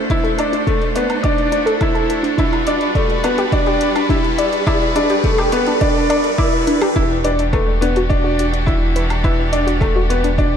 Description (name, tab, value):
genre	piano and strings electronica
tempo	105 BPM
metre	4/4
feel	straight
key	E minor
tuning	A4 = 440 Hz
part	bright string quartet	sustained chords	0.0-10.6 s	E3 to C5	-23 LUFS	equal	none
part	riser	sound effects	0.0-7.0 s	none	-25 LUFS	right 2 dB	none
part	bright upright piano	riff	0.1-10.6 s	A3 to E4	-19 LUFS	equal	ping-pong delay
part	electronic hi-hat and woodblock	drums	0.1-10.5 s	none	-32 LUFS	equal	none
part	electronic kick drum	drums	0.1-10.5 s	none	-20 LUFS	equal	none
part	warbly dusty pluck	arpeggios	0.2-10.5 s	D4 to D5	-21 LUFS	left 2 dB	chorus, cassette tape, sidechain pumping, ping-pong delay
part	warm sub bass	bass	7.0-10.6 s	E1	-20 LUFS	equal	tube saturation, sidechain pumping
room	moderate scoring stage reverb, RT60 1.8 s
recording	dark, warm production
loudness	-14 LUFS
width	side -8 dB against mid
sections	0.0-7.0 A section; 7.0-10.6 B section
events	build-up 0.0-7.0; riser 0.0-7.0; drop 7.0-10.6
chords	0.0 D7; 2.4 Gmaj7; 7.0 Em9